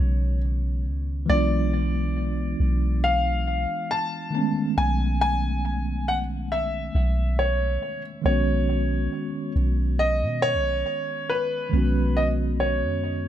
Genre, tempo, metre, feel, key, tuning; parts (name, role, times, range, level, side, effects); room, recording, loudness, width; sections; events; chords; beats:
contemporary R&B; 69 BPM; 4/4; swing 54% on 16ths; B major; A4 = 439 Hz
warm concert grand piano; melody; 0.0-13.3 s; B4 to A5; -26 LUFS; equal; tape echo
mellow tine electric piano; accompaniment; 0.0-13.3 s; D#3 to F#4; -28 LUFS; right 1 dB; medium stereo tremolo, tape echo
soft 808-style bass; bass; 0.0-13.3 s; B1 to B2; -24 LUFS; equal
small room ambience; echo-heavy mix; -22 LUFS; side -11 dB against mid
0.0-13.3 A section
0.0 B69; 1.3 E7b9/B; 4.3 Amaj9#11/B; 8.2 B69
0.42 | 1.29 2.16 3.03 3.90 | 4.77 5.64 6.51 7.38 | 8.25 9.12 9.99 10.86 | 11.72 12.60